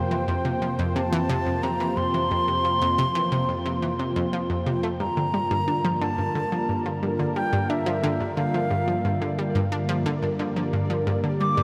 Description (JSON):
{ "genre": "ambient, sequencer-driven space music", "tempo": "89 BPM", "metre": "4/4", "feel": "straight", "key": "G minor", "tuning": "A4 = 441 Hz", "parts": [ { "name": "wooden flute", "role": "melody", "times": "0.0-11.6 s", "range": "E5 to D6", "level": "-30 LUFS", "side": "equal", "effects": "tape echo" }, { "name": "sweeping resonant pad", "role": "sustained chords", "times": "0.0-11.6 s", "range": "F2 to C5", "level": "-29 LUFS", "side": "equal", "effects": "chorus" }, { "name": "analog pluck", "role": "riff", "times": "0.0-11.6 s", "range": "F2 to D4", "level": "-29 LUFS", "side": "equal", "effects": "chorus, tape echo" }, { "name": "pulsing gated texture", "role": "texture", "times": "0.1-11.6 s", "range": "D5 to G5", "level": "-46 LUFS", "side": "equal", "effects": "none" } ], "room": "wet huge ambient reverb, RT60 7.4 s", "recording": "none", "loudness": "-25 LUFS", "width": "mono", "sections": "0.0-11.6 A section", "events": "none", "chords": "0.0 F5; 5.0 Gm7" }